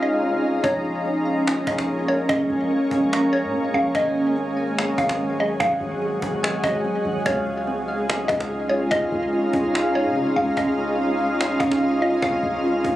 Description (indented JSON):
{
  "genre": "hip hop, atmospheric cloud-rap",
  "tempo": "145 BPM",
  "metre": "4/4",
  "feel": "half-time",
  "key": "Bb minor",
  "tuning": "A4 = 437 Hz",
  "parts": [
    { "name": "mallet-like synth pluck", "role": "melody", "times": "0.0-12.6 s", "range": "Db5 to F5", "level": "-26 LUFS", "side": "equal", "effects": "chorus, phaser, low-pass filter, ping-pong delay" },
    { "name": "shimmering ambient pad", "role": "sustained chords", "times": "0.0-13.0 s", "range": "Db3 to F4", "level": "-24 LUFS", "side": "equal", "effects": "chorus, built-in reverb" },
    { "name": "soft electric-piano-like synth keys", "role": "arpeggios", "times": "0.0-13.0 s", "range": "C4 to Bb5", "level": "-25 LUFS", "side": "equal", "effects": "chorus, low-pass filter, ping-pong delay" },
    { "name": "warm 808-style bass", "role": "bass", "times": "0.6-13.0 s", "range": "Ab1 to Db3", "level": "-34 LUFS", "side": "equal", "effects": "none" },
    { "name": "cajon", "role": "drums", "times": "0.6-12.9 s", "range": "none", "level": "-27 LUFS", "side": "equal", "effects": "none" }
  ],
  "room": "light reverb",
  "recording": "recorded on a phone in the room, club ambience",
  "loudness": "-20 LUFS",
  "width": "side -14 dB against mid",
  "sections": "0.6-13.0 A section",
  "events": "break 0.0-0.6",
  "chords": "0.0 Dbmaj7; 0.6 Bbm7; 3.9 Ab7; 7.3 Dbmaj7"
}